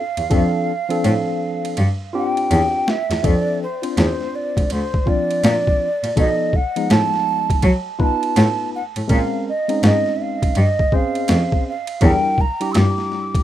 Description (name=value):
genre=hip hop, jazz-hop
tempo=82 BPM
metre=4/4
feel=swing 63% on 16ths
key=F major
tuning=A4 = 435 Hz
part: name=breathy mellow jazz flute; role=melody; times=0.0-13.4 s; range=C5 to E6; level=-22 LUFS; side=right 2 dB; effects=analog delay
part: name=tine electric piano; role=accompaniment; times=0.0-13.4 s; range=F3 to C5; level=-23 LUFS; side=left 2 dB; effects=medium stereo tremolo
part: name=clear cello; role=bass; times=0.2-12.8 s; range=D2 to F#3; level=-18 LUFS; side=equal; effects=none
part: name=boom bap sampler-style drum kit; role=drums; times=0.2-13.4 s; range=hi-hat, kick drum, ride cymbal, snare drum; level=-20 LUFS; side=equal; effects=overdrive
room=little or no reverb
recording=rough home demo mix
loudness=-16 LUFS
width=side -12 dB against mid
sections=0.0-3.2 A section; 3.2-13.4 A section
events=drum fill 0.3-3.2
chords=0.0 F6; 6.2 B7#11; 9.1 Bbm9; 12.0 Em7b5